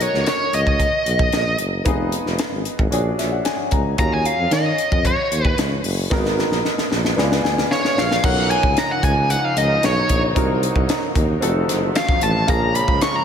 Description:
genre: polished 1980s jazz-funk pop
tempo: 113 BPM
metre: 4/4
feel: straight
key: unclear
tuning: A4 = 440 Hz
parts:
  - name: high-gain lead guitar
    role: melody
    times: 0.0-13.2 s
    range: C#5 to C#6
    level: -21 LUFS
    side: equal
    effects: distortion, ping-pong delay
  - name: warm grand piano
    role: accompaniment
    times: 0.0-13.2 s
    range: A#3 to A#5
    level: -25 LUFS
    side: left 1 dB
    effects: wide subtle chorus, slapback echo
  - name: warm tuba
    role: bass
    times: 0.0-13.0 s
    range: F1 to D#3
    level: -22 LUFS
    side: equal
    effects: none
  - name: crisp fusion drum kit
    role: drums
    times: 0.0-13.1 s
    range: crash cymbal, hi-hat, kick drum, snare drum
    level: -22 LUFS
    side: equal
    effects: none
  - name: warm studio string section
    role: sustained chords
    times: 8.2-13.2 s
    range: C3 to A#4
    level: -27 LUFS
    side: right 2 dB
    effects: none
room: moderate lush hall reverb, RT60 2.5 s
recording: big arena sound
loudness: -16 LUFS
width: side -8 dB against mid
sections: 0.0-8.2 A section; 8.2-13.2 B section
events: grand piano fill 2.9-4.0, 7.2-8.2; drum fill 6.1-8.2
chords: 0.0 Bmaj9 (rootless); 1.9 Fm7b5; 2.9 A#7alt; 4.0 D#m11; 6.1 G#m9; 7.2 C#7b9; 8.2 Bmaj9#11; 10.4 Cm7b5; 11.4 F7b9; 12.5 A#m7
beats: 0.27 0.80 1.33 | 1.86 2.39 2.92 3.46 | 3.99 4.52 5.05 5.58 | 6.11 6.64 7.17 7.71 | 8.24 8.77 9.30 9.83 | 10.36 10.89 11.42 11.96 | 12.49 13.02

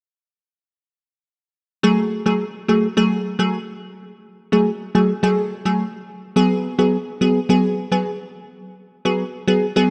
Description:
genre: dancehall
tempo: 106 BPM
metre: 4/4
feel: straight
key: F# minor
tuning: A4 = 443 Hz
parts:
  - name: wavetable chord stab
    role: accompaniment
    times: 1.8-9.9 s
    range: F#3 to G#4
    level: -20 LUFS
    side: equal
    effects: none
room: moderate lush hall reverb, RT60 2.7 s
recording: none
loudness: -20 LUFS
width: mono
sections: 1.8-9.9 A section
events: none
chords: 1.8 F#madd9; 6.4 G#m7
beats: | 1.84 2.40 2.97 3.54 | 4.10 4.67 5.23 5.80 | 6.37 6.93 7.50 8.06 | 8.63 9.20 9.76

